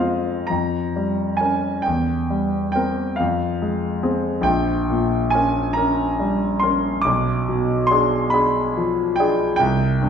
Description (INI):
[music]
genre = classical, romantic nocturne for solo piano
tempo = 38-48 BPM (dotted quarters)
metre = 12/8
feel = rubato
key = unclear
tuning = A4 = 442 Hz
[part]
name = clear concert grand piano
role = solo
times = 0.0-10.1 s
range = Bb1 to D6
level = -18 LUFS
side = equal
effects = none
[sound]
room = wet recital hall reverb, RT60 1.4 s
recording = recorded in a church or concert hall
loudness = -18 LUFS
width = side -7 dB against mid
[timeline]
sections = 0.0-10.1 A section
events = none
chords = 0.5 Gm7b5/F; 1.9 C7/E; 3.2 Fm; 4.5 Gdim/Bb; 7.1 Bdim7